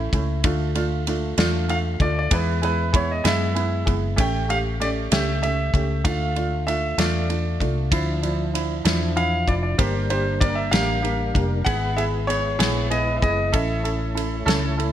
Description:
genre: six-eight pop ballad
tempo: 64 BPM (dotted quarters)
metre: 6/8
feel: straight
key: unclear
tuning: A4 = 444 Hz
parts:
  - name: warm upright piano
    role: accompaniment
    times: 0.0-14.9 s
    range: F3 to A4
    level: -26 LUFS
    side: right 3 dB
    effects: analog chorus
  - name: vintage muted fingered electric bass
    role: bass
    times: 0.0-14.9 s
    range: F1 to F#2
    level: -24 LUFS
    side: left 1 dB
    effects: none
  - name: loose indie drum kit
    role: drums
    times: 0.1-14.9 s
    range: kick drum, ride cymbal, snare drum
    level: -25 LUFS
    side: left 1 dB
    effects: gated reverb
  - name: warm concert grand piano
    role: melody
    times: 1.7-14.4 s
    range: B4 to G5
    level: -26 LUFS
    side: equal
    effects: ping-pong delay
  - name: percussive tonewheel organ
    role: sustained chords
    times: 7.9-14.9 s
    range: G3 to B4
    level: -32 LUFS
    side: left 2 dB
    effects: chorus vibrato, slow rotary speaker
room: light reverb, studio reverb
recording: bright 1980s-style digital production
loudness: -20 LUFS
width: side -11 dB against mid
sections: 0.0-14.9 A section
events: none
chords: 0.4 Dm; 2.3 E; 4.2 A7; 6.1 Dm; 7.9 Dmadd9; 9.8 Gm; 11.7 E/G#; 13.5 A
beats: | 0.45 1.38 | 2.31 3.25 | 4.18 5.12 | 6.05 6.99 | 7.92 8.86 | 9.79 10.73 | 11.66 12.60 | 13.54 14.47

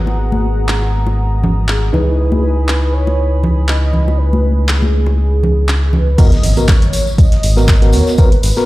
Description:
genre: deep house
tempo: 120 BPM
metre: 4/4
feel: swing 55% on 16ths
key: G# minor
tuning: A4 = 440 Hz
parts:
  - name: mellow horn-like synth lead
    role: melody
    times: 0.0-8.7 s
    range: G#4 to D#5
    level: -23 LUFS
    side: right 1 dB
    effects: analog chorus, digital delay
  - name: dark analog pad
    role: sustained chords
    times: 0.0-6.1 s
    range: F#5 to D#6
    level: -28 LUFS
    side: right 1 dB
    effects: chorus, sidechain pumping
  - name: tine electric piano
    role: stabs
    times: 0.0-8.7 s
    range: B3 to B4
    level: -21 LUFS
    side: equal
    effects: overdrive, fast stereo tremolo, sidechain pumping, low-pass filter, tape echo
  - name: round analog bass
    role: bass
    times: 0.0-8.5 s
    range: G#1 to D#2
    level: -14 LUFS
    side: equal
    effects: sidechain pumping
  - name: bongos and congas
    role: percussion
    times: 0.1-6.0 s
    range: none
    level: -21 LUFS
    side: equal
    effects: none
  - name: deep house drum kit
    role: drums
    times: 0.7-8.5 s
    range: crash cymbal, handclaps, hi-hat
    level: -22 LUFS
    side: equal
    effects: none
  - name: electronic kick drum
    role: drums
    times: 6.2-8.3 s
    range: none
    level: -9 LUFS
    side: equal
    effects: none
  - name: warm soul drum kit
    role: drums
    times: 6.2-8.7 s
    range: hi-hat, snare drum, tambourine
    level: -33 LUFS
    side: equal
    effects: none
  - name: tambourine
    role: percussion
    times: 6.2-8.7 s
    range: none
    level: -29 LUFS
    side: left 2 dB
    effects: none
  - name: impact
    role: sound effects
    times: 6.2-8.2 s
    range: none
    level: -18 LUFS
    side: equal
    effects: none
room: small room ambience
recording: played on a big sound system in a bare room, stone room reverb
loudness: -11 LUFS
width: side -18 dB against mid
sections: 0.0-6.2 A section; 6.2-8.7 B section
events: drop 6.2-8.7; impact 6.2-8.2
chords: 0.0 G#m9; 1.9 C#m9; 6.2 G#m9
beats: | 0.18 0.68 1.18 1.68 | 2.18 2.68 3.18 3.68 | 4.18 4.68 5.18 5.68 | 6.18 6.68 7.18 7.68 | 8.18

